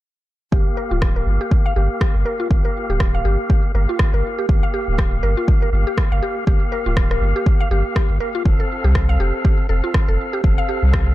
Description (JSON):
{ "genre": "afro house", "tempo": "121 BPM", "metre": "4/4", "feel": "swing 58% on 16ths", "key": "G minor", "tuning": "A4 = 440 Hz", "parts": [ { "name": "mallet-like synth pluck", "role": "arpeggios", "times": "0.5-11.1 s", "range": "F4 to F5", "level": "-25 LUFS", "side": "equal", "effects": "chorus, sidechain pumping, digital delay" }, { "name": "tonewheel organ", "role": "stabs", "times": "0.5-11.1 s", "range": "Bb3 to F5", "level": "-26 LUFS", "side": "left 1 dB", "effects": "overdrive, fast rotary speaker, sidechain pumping, low-pass filter, digital delay" }, { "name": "warm sub bass", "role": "bass", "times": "0.5-11.1 s", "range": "D1 to C2", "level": "-18 LUFS", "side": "equal", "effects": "sidechain pumping" }, { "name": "electronic kick drum", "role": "drums", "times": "0.5-11.1 s", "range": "none", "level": "-17 LUFS", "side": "equal", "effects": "studio ambience" }, { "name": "electronic rim click", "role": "drums", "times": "1.0-11.1 s", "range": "none", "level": "-27 LUFS", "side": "equal", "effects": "studio ambience" } ], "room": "little or no reverb", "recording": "dark, warm production", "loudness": "-16 LUFS", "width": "side -16 dB against mid", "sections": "0.5-11.1 A section", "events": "filter sweep on synth pluck 0.5-11.1; filter sweep on tonewheel organ 0.5-11.1", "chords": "0.5 Gm7; 8.5 F" }